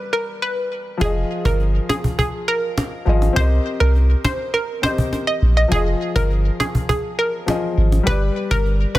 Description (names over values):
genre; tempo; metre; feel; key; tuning
dancehall; 102 BPM; 4/4; straight; unclear; A4 = 440 Hz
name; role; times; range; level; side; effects
warm grand piano; accompaniment; 0.0-9.0 s; F3 to Eb5; -25 LUFS; left 3 dB; none
analog pluck; melody; 0.1-9.0 s; Ab4 to Eb5; -22 LUFS; right 1 dB; chorus, digital delay
punchy sub bass; bass; 1.0-8.9 s; F1 to C2; -16 LUFS; equal; none
cajon; drums; 1.0-9.0 s; none; -22 LUFS; equal; none
room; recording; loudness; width
studio reverb; dense, heavily limited modern master; -17 LUFS; side -16 dB against mid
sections
0.0-1.0 A section; 1.0-9.0 B section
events
break 0.0-1.0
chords
0.0 G; 1.0 Fm7; 3.4 Cm7; 5.7 Fm7; 8.1 G